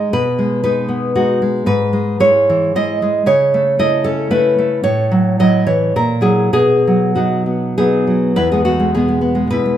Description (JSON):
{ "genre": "romantic piece for solo classical guitar", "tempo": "96-119 BPM", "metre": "3/4", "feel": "rubato", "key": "E major", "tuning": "A4 = 439 Hz", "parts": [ { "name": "nylon-string guitar", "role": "solo", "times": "0.0-9.8 s", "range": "E2 to D#5", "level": "-12 LUFS", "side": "equal", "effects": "none" } ], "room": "moderate recital hall reverb, RT60 1.6 s", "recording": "minimal, uncompressed stereo recording", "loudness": "-12 LUFS", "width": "side -10 dB against mid", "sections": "0.0-8.4 A section; 8.4-9.8 B section", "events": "none", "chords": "0.1 G#m/B; 1.7 E/G#; 3.3 A/C#; 4.8 A6; 6.0 F#7/A#; 6.5 B; 8.4 E", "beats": "| 0.12 0.64 1.15 | 1.68 2.22 2.75 | 3.26 3.79 4.30 | 4.83 5.39 5.95 | 6.55 7.17 7.78 | 8.38 8.95 9.52" }